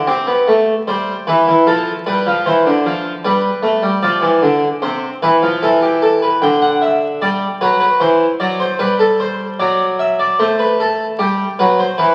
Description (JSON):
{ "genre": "classical, baroque-style two-part invention for harpsichord", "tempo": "76 BPM", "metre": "4/4", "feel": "straight", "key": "C major", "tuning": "A4 = 440 Hz", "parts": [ { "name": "harpsichord", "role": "solo", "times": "0.0-12.1 s", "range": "C3 to G5", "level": "-15 LUFS", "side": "equal", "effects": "none" } ], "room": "wet recital hall reverb, RT60 1.4 s", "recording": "very old 78 rpm record, vinyl crackle", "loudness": "-15 LUFS", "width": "mono", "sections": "0.1-12.1 A section", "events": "none", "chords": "0.1 C; 1.7 Dm7/F; 3.2 G7; 4.8 C; 6.4 G/D; 8.0 Am7/E; 9.6 D7/F#; 11.2 G", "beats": "| 0.07 0.87 1.66 2.46 | 3.24 4.03 4.82 5.62 | 6.41 7.20 7.99 8.78 | 9.58 10.38 11.18 11.98" }